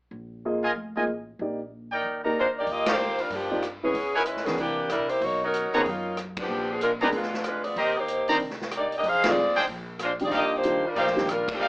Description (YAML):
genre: jazz, big band swing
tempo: 188 BPM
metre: 4/4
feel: swing 63% on 8ths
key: Eb major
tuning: A4 = 441 Hz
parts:
  - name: upright bass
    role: bass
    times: 0.1-11.7 s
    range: F1 to G2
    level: -41 LUFS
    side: equal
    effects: none
  - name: warm concert grand piano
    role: accompaniment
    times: 0.5-11.3 s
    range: D#3 to Eb5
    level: -28 LUFS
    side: equal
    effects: none
  - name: bright trumpet section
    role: stabs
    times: 0.6-11.7 s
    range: D4 to Bb5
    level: -26 LUFS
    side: equal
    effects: none
  - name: bright saxophone section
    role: melody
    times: 2.4-11.7 s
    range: Eb3 to F5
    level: -25 LUFS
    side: equal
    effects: none
  - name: swinging big-band drum kit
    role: drums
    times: 2.7-11.5 s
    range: hi-hat, kick drum, ride cymbal, rim click, snare drum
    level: -34 LUFS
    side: equal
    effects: none
room: moderate club reverb, RT60 0.6 s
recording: AM radio sound, faint mains hum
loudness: -24 LUFS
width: side -24 dB against mid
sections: 0.1-2.7 A section; 2.7-11.7 B section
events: band accent 2.8, 6.3, 9.2, 11.4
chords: 0.1 Bb7sus4; 1.4 Ebmaj7/Bb; 2.7 Ebmaj9; 3.9 Dbm7; 4.6 C9; 5.2 Bmaj9; 6.5 Bb7b9; 7.8 Eb6; 8.4 Cm9; 9.0 Fm7; 9.7 Bb13; 10.3 Ebmaj9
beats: | 0.12 0.44 0.76 1.08 | 1.40 1.72 2.03 2.35 | 2.67 2.99 3.31 3.63 | 3.95 4.26 4.58 4.90 | 5.22 5.54 5.86 6.17 | 6.49 6.81 7.13 7.45 | 7.77 8.09 8.40 8.72 | 9.04 9.36 9.68 10.00 | 10.32 10.64 10.96 11.28 | 11.59